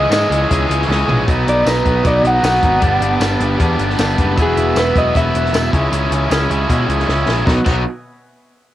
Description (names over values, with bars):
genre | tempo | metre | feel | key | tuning
indie rock | 155 BPM | 4/4 | straight | B major | A4 = 440 Hz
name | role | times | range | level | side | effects
electric guitar through a small old amp | melody | 0.0-5.9 s | G#4 to F#5 | -18 LUFS | equal | vibrato effect, cassette tape, tape echo
combo organ | sustained chords | 0.0-7.6 s | B2 to E6 | -24 LUFS | equal | spring reverb, cassette tape
raw garage guitar | riff | 0.0-7.8 s | E3 to G#4 | -17 LUFS | equal | overdrive, cassette tape
picked electric bass | bass | 0.0-7.8 s | E1 to B2 | -19 LUFS | equal | none
compact cocktail drum kit | drums | 0.1-7.8 s | crash cymbal, hi-hat, kick drum, snare drum, tambourine, toms | -19 LUFS | equal | none
room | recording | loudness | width
light reverb | home recording on cassette | -13 LUFS | side -13 dB against mid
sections
0.0-1.3 A section; 1.3-7.5 B section; 7.5-8.7 C section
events
drum fill 0.9-1.3, 7.1-7.5; clean electric guitar solo 1.3-7.5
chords
0.0 C#madd9; 1.3 B; 2.8 Gadd9; 4.4 Esus2; 5.7 C#madd9; 7.5 B